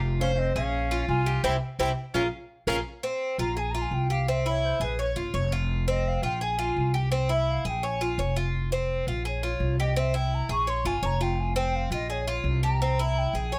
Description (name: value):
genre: latin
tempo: 169 BPM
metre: 4/4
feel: straight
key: F minor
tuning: A4 = 439 Hz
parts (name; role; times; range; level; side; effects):
- Cuban tres; arpeggios; 0.0-13.6 s; C4 to Db5; -31 LUFS; equal; none
- upright bass; bass; 0.0-13.6 s; F1 to C2; -30 LUFS; equal; none
- mellow hollow jazz flute; melody; 0.2-13.6 s; B4 to Db6; -34 LUFS; equal; slapback echo
- brilliant trumpet; second line; 0.2-2.8 s; C4 to F4; -37 LUFS; equal; none
room: light reverb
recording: none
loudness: -27 LUFS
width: mono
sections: 0.0-2.9 A section; 2.9-13.6 B section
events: band accent 1.4-2.9; flute solo 2.9-13.6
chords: 0.0 Fm; 0.7 Bbm7; 1.4 C; 2.2 Bb7(no3); 2.9 F5; 3.6 Bb5; 4.3 C7; 5.0 Bbm; 5.7 F5; 6.4 Bb5; 7.1 C7; 7.8 Bbm7; 8.5 F5; 9.3 Bbm7; 10.0 C7; 10.7 Bbm; 11.4 F5; 12.1 Bbm7; 12.8 C7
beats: | 0.03 0.38 0.73 1.09 | 1.44 1.80 2.15 2.51 | 2.86 3.21 3.57 3.92 | 4.28 4.63 4.99 5.34 | 5.70 6.05 6.41 6.76 | 7.12 7.48 7.83 8.19 | 8.54 8.90 9.25 9.61 | 9.96 10.32 10.67 11.03 | 11.38 11.74 12.09 12.45 | 12.80 13.16 13.51